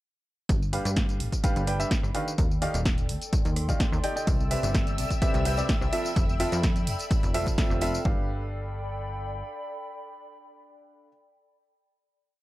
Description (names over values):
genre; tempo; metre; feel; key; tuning
piano house; 127 BPM; 4/4; straight; G mixolydian; A4 = 440 Hz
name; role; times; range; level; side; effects
plucky analog bass; bass; 0.5-9.4 s; Eb1 to G2; -30 LUFS; equal; sidechain pumping
electronic kick drum; drums; 0.5-8.2 s; none; -26 LUFS; equal; none
punchy analog drum machine; drums; 0.5-8.0 s; hi-hat, rim click, snare drum, tambourine; -34 LUFS; right 1 dB; none
warbly tape-like pad; texture; 1.3-11.3 s; A4 to C6; -38 LUFS; left 2 dB; chorus, built-in reverb, sidechain pumping
clear upright piano; riff; 0.7-11.1 s; C3 to G5; -31 LUFS; right 1 dB; sidechain pumping
analog string pad; sustained chords; 4.3-8.1 s; E5 to E6; -36 LUFS; left 1 dB; ensemble chorus, vintage 12-bit sampler grit, sidechain pumping
tambourine; percussion; 4.3-8.0 s; none; -43 LUFS; right 5 dB; none
room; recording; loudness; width
little or no reverb; dark, warm production; -24 LUFS; side -17 dB against mid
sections
0.5-8.1 drop; 8.1-11.8 final chord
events
drop 0.5-8.1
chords
0.5 G7; 2.4 Ebmaj9; 4.3 Cmaj7; 5.9 Fmaj7; 8.1 G7